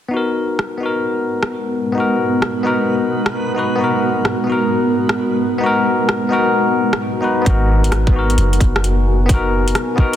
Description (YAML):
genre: future garage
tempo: 131 BPM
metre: 4/4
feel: swing 66% on 16ths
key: G# minor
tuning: A4 = 441 Hz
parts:
  - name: bell-like tine electric piano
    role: accompaniment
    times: 0.1-10.2 s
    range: B3 to B4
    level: -18 LUFS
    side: left 2 dB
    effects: sidechain pumping, low-pass filter, digital delay
  - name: granular cloud pad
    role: sustained chords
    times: 1.3-10.2 s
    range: G#3 to G#5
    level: -21 LUFS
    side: right 1 dB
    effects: built-in reverb, sidechain pumping
  - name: backwards swelling texture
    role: texture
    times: 2.2-7.5 s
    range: B3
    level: -30 LUFS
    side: right 2 dB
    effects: built-in reverb
  - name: garage drum kit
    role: drums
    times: 0.6-10.2 s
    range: hi-hat, rim click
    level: -22 LUFS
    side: equal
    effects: soft clipping on snare
  - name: soft 808-style bass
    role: bass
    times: 7.5-9.7 s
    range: F#1 to G#1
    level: -16 LUFS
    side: equal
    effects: tube saturation, sidechain pumping
  - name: electronic kick drum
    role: drums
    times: 7.5-10.1 s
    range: none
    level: -13 LUFS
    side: equal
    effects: none
room: moderate lush hall reverb, RT60 2.1 s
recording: dense, heavily limited modern master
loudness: -14 LUFS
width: side -11 dB against mid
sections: 0.1-7.5 A section; 7.5-10.2 B section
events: filter sweep on tine electric piano 7.5-10.2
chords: 0.1 G#m9